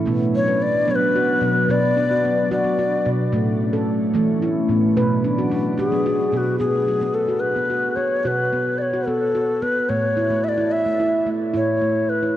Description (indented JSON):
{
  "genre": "world meditative, meditative tuned percussion",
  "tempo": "73 BPM (dotted quarters)",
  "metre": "6/8",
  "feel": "straight",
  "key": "B dorian",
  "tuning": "A4 = 440 Hz",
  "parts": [
    { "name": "glassy FM pad", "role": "sustained chords", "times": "0.0-6.6 s", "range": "E3 to D4", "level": "-24 LUFS", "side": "left 1 dB", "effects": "ensemble chorus, built-in reverb, shimmer reverb" },
    { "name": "handpan", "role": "arpeggios", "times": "0.0-12.4 s", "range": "A2 to B4", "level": "-22 LUFS", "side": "right 1 dB", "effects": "none" },
    { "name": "mellow Native American-style cedar flute", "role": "melody", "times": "0.4-3.1, 5.8-12.4 s", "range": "F#4 to E5", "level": "-21 LUFS", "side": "left 2 dB", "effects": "shimmer reverb, diffuse ambient delay" }
  ],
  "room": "wet cathedral reverb, RT60 5.8 s",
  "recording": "worn, warbling old tape, cassette tape, warbly pitch drift",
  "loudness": "-18 LUFS",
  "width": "side -12 dB against mid",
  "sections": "0.0-6.6 A section; 6.6-12.4 B section",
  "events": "none",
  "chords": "0.1 Bm; 3.3 A; 5.0 Bm; 6.6 B5; 9.9 A"
}